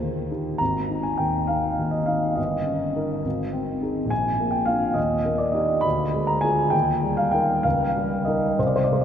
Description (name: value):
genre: classical, romantic character piece for solo piano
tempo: 68 BPM (dotted quarters)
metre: 6/8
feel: uneven beats, rubato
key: Eb major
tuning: A4 = 440 Hz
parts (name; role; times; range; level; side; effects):
- warm concert grand piano; solo; 0.0-9.0 s; G1 to B5; -21 LUFS; equal; none
room: wet cathedral reverb, RT60 4.9 s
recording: none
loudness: -21 LUFS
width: side -9 dB against mid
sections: 0.0-9.0 A section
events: none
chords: 0.0 Eb; 0.6 Ab5; 2.4 Eb7/G; 3.2 Ab; 4.1 Bb; 5.0 Eb; 5.8 Ddim7; 6.7 Eb; 7.6 Eb7/Db